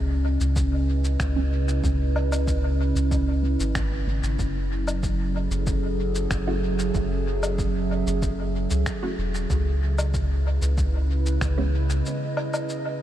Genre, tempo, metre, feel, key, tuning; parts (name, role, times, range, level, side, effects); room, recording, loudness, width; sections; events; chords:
ambient dub; 94 BPM; 4/4; straight; F# dorian; A4 = 438 Hz
warbly tape-like pad; sustained chords; 0.0-13.0 s; C#3 to E5; -28 LUFS; right 2 dB; chorus, built-in reverb
soft dub sub bass; bass; 0.0-12.0 s; E1 to C#2; -24 LUFS; equal; tube saturation
electronic cabasa, finger snaps and woodblock; drums; 0.4-12.8 s; -34 LUFS; left 1 dB; dub echo
electronic kick drum; drums; 0.6-11.5 s; -30 LUFS; equal; overdrive
filtered dub chord stab; stabs; 1.4-11.8 s; E3 to F#4; -36 LUFS; right 3 dB; phaser, dub echo
light reverb, digital ambience; -22 LUFS; side -12 dB against mid
0.0-13.0 A section
filter sweep on synth stab 0.0-13.0; break 12.1-13.0
0.0 C#m7; 4.4 F#m7; 9.5 C#m7